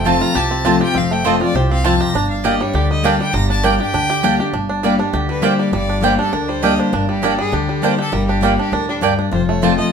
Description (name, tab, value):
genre	bluegrass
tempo	200 BPM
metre	4/4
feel	straight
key	G minor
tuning	A4 = 440 Hz
part	bluegrass banjo	melody	0.0-9.9 s	D3 to G4	-21 LUFS	right 4 dB	none
part	clear fiddle	melody	0.0-9.9 s	D4 to Bb5	-22 LUFS	left 1 dB	none
part	picked steel-string acoustic guitar	accompaniment	0.0-9.9 s	F2 to G4	-19 LUFS	left 4 dB	none
part	upright bass	bass	0.0-9.8 s	F1 to D2	-22 LUFS	equal	none
part	mandolin	stabs	0.1-9.7 s	Bb3 to A5	-19 LUFS	right 5 dB	none
room	moderate studio reverb, RT60 0.8 s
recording	band playing live in one room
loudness	-14 LUFS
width	side -6 dB against mid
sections	0.0-4.5 A section; 4.5-9.9 B section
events	fiddle solo 0.0-4.5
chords	0.0 F; 2.1 Gm; 9.3 F